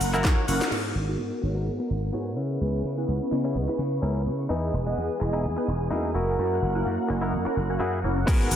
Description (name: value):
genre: filtered disco house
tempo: 127 BPM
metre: 4/4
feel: swing 55% on 16ths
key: unclear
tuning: A4 = 436 Hz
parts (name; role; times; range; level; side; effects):
- funky polysynth comp; accompaniment; 0.0-8.6 s; E3 to D#5; -29 LUFS; equal; chorus, phaser, sidechain pumping, low-pass filter
- string machine, full ensemble; sustained chords; 0.0-8.6 s; E3 to F#6; -33 LUFS; equal; ensemble chorus, sidechain pumping, low-pass filter
- gritty slap bass; bass; 0.0-8.6 s; E1 to C#3; -28 LUFS; equal; overdrive, sidechain pumping, low-pass filter
- house drum kit; drums; 0.0-0.8, 8.3-8.6 s; crash cymbal, handclaps, hi-hat, shaker, snare drum; -30 LUFS; equal; overdrive, studio reverb
- direct-recorded clean electric guitar; riff; 0.1-8.6 s; B3 to F#5; -33 LUFS; left 1 dB; sidechain pumping, low-pass filter
- maracas; percussion; 0.1-0.7, 8.3-8.5 s; none; -48 LUFS; equal; none
- electronic kick drum; drums; 0.2-0.4, 8.3-8.4 s; none; -22 LUFS; equal; overdrive, studio reverb
room: moderate plate reverb, RT60 2.0 s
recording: dreamy mix soaked in reverb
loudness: -24 LUFS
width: side -10 dB against mid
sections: 0.7-8.3 A section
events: clean electric guitar fill 0.0-0.7; drum fill 0.2-0.7; band accent 0.6; filter sweep 0.7-8.3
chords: 0.0 F#7; 0.7 G#m9; 2.4 C#m7; 4.5 Emaj7; 6.2 F#7